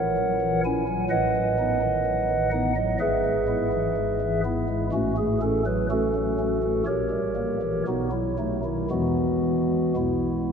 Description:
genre	classical, chorale-style piece for pipe organ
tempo	56-64 BPM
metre	4/4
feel	rubato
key	E major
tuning	A4 = 440 Hz
part	pipe organ, stopped flute	solo	0.0-10.5 s	G#1 to G#5	-22 LUFS	equal	none
room	wet cathedral reverb, RT60 5.4 s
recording	none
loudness	-22 LUFS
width	side -6 dB against mid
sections	0.0-10.5 A section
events	none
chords	0.0 F#7/A#; 1.1 B7/A; 3.0 E/G#; 4.9 F#m/A; 6.9 A#dim7; 7.9 B7; 8.9 E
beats	0.17 | 1.11 2.06 3.01 3.97 | 4.93 5.90 6.86 7.86 | 8.90 9.96

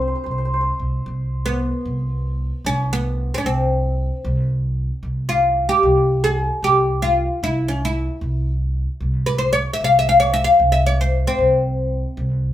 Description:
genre	persian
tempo	76 BPM (dotted quarters)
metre	6/8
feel	straight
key	C dastgah chahargah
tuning	A4 = 438 Hz
part	oud	melody	0.0-12.3 s	B3 to F5	-18 LUFS	left 1 dB	none
part	santur	second line	0.0-3.2 s	C5 to E5	-28 LUFS	equal	none
part	upright bass	bass	0.0-12.5 s	C2	-21 LUFS	right 1 dB	none
room	moderate studio reverb, RT60 0.6 s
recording	band playing live in one room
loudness	-17 LUFS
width	side -12 dB against mid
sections	0.0-1.1 A section; 1.1-12.5 B section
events	none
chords	none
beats	0.26 | 1.05 1.85 | 2.65 3.44 | 4.24 5.03 | 5.83 6.62 | 7.42 8.21 | 9.01 9.80 | 10.59 11.39 | 12.18

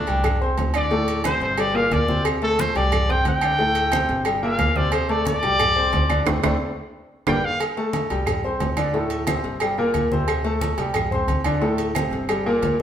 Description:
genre	latin, salsa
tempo	179 BPM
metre	4/4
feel	straight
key	unclear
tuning	A4 = 441 Hz
part	clear trumpet	melody	0.0-7.6 s	D4 to G5	-22 LUFS	left 1 dB	none
part	clear concert grand piano	accompaniment	0.0-12.8 s	A2 to C6	-24 LUFS	left 1 dB	none
part	upright bass	bass	0.1-12.8 s	G1 to D2	-27 LUFS	equal	none
part	agogo bells and timbales	percussion	0.1-12.8 s	none	-29 LUFS	right 6 dB	none
part	congas	percussion	0.1-12.8 s	none	-29 LUFS	equal	none
part	cowbell	percussion	0.1-12.8 s	none	-30 LUFS	left 3 dB	none
part	claves	percussion	0.3-12.5 s	none	-33 LUFS	right 7 dB	none
room	wet stone room reverb, RT60 1.3 s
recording	band playing live in one room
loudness	-19 LUFS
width	side -9 dB against mid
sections	0.0-7.6 A section; 7.6-12.8 B section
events	trumpet solo 0.0-7.6; band accent 6.3-7.6; drum fill 6.9-7.6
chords	0.2 C5; 0.9 D5; 1.6 Gm; 2.3 D5; 2.9 C5; 3.6 D5; 4.3 Gm; 4.9 D5; 5.6 C5; 6.3 D5; 6.9 Gm; 7.6 Am7; 8.3 C5; 8.9 D5; 9.6 Gm; 10.3 D5; 11.0 C5; 11.6 D5; 12.3 Gm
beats	0.25 0.58 | 0.92 1.25 1.58 1.92 | 2.25 2.59 2.92 3.26 | 3.59 3.93 4.26 4.59 | 4.93 5.26 5.60 5.93 | 6.27 6.60 6.94 7.27 | 7.61 7.94 8.27 8.61 | 8.94 9.28 9.61 9.95 | 10.28 10.62 10.95 11.29 | 11.62 11.96 12.29 12.62

